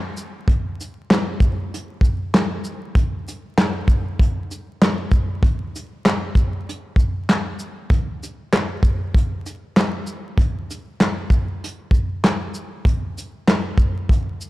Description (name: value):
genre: hip hop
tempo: 97 BPM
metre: 4/4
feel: swing 62% on 16ths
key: none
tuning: none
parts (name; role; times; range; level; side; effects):
- soft brush drum kit; drums; 0.2-14.5 s; handclaps, hi-hat, kick drum, shaker, snare drum; -18 LUFS; equal; none
room: light reverb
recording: dry, gritty hardware recording, vinyl crackle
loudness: -18 LUFS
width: side -18 dB against mid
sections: 0.0-14.5 A section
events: none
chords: none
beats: | 0.48 1.10 1.72 2.34 | 2.96 3.57 4.19 4.81 | 5.43 6.05 6.67 7.29 | 7.90 8.52 9.14 9.76 | 10.38 11.00 11.62 12.23 | 12.85 13.47 14.09